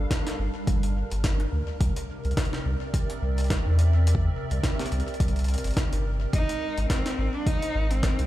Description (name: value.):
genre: IDM.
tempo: 106 BPM.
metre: 4/4.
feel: swing 56% on 16ths.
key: unclear.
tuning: A4 = 443 Hz.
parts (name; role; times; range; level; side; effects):
hollow soft pad; sustained chords; 0.0-8.3 s; C3 to F5; -34 LUFS; equal; ensemble chorus.
warm sub bass; bass; 0.0-8.3 s; G1 to E2; -24 LUFS; equal; none.
electronic kick drum; drums; 0.1-8.2 s; none; -26 LUFS; equal; none.
jungle sampler-style drum kit; drums; 0.1-8.3 s; hi-hat, snare drum; -34 LUFS; equal; overdrive, ping-pong delay.
rich cello; melody; 6.3-8.3 s; C4 to Eb4; -29 LUFS; equal; ping-pong delay.
room: little or no reverb.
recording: played on a big sound system in a bare room, large studio reverb.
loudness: -23 LUFS.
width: side -15 dB against mid.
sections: 0.0-8.3 A section.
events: none.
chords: 0.0 Gm7; 1.8 C7; 6.3 Ab6.